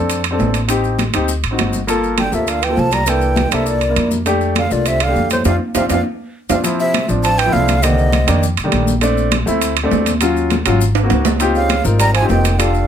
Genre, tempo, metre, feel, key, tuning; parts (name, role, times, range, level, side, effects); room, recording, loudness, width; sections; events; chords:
Afro-Cuban jazz; 202 BPM; 4/4; straight; F major; A4 = 440 Hz
warm grand piano; accompaniment; 0.0-12.9 s; D3 to Bb4; -19 LUFS; left 2 dB
upright bass; bass; 0.0-12.9 s; F1 to F2; -18 LUFS; equal
congas; percussion; 0.1-12.9 s; -23 LUFS; left 2 dB
maracas; percussion; 0.1-12.9 s; -28 LUFS; left 6 dB
timbales; percussion; 0.1-12.7 s; -22 LUFS; right 9 dB
breathy mellow silver concert flute; melody; 2.2-8.4, 11.6-12.9 s; C5 to Bb5; -19 LUFS; right 1 dB
trombone with cup mute; second line; 2.2-8.4, 11.6-12.9 s; A2 to G3; -24 LUFS; right 4 dB
light reverb; close, detailed microphones; -13 LUFS; side -9 dB against mid
0.0-6.6 A section; 6.6-12.9 B section
band accent 5.5-6.6; drum fill 5.8-6.6, 11.0-11.4
0.0 Bbmaj9 (rootless); 0.7 Am7b5; 1.3 D7b9; 1.9 Gm9; 3.1 C13; 4.3 F6; 6.6 Dm9; 7.8 Cm7; 8.4 F13; 9.0 Bbmaj9; 10.2 Ebm7; 10.8 Ab9; 11.4 Dbmaj9#11